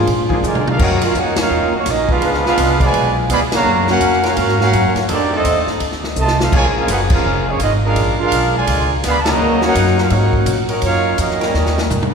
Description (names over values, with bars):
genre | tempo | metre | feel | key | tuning
jazz, big band swing | 167 BPM | 4/4 | swing 62% on 8ths | Eb minor | A4 = 440 Hz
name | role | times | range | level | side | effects
mellow trombone section | sustained chords | 0.0-11.9 s | Eb3 to C5 | -25 LUFS | left 1 dB | none
upright bass | bass | 0.0-12.1 s | F1 to D3 | -19 LUFS | equal | none
swinging big-band drum kit | drums | 0.1-12.1 s | crash cymbal, hi-hat, kick drum, ride cymbal, snare drum, toms | -21 LUFS | equal | none
bright trombone section | second line | 0.4-12.1 s | Cb3 to Gb4 | -20 LUFS | right 2 dB | none
warm trumpet section | melody | 0.5-12.1 s | Bb3 to Cb6 | -18 LUFS | right 2 dB | none
room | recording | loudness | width
wet church reverb, RT60 2.9 s | recorded in a church or concert hall | -13 LUFS | side -6 dB against mid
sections
0.8-12.1 A section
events
drum fill 0.4-0.8, 6.2-6.5, 11.5-12.1; band accent 1.3, 3.5, 7.1, 9.2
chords
0.1 Bb7; 0.8 Ebm7; 2.2 Db7b9; 3.7 Gbmaj7; 5.1 F7; 6.5 Bbm7; 8.0 Bb7; 9.4 Ebm7; 11.5 Eb7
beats
0.07 0.43 | 0.79 1.15 1.50 1.86 | 2.22 2.58 2.94 3.30 | 3.66 4.01 4.37 4.73 | 5.09 5.45 5.81 6.17 | 6.52 6.88 7.24 7.60 | 7.96 8.32 8.68 9.04 | 9.39 9.75 10.11 10.47 | 10.83 11.19 11.55 11.91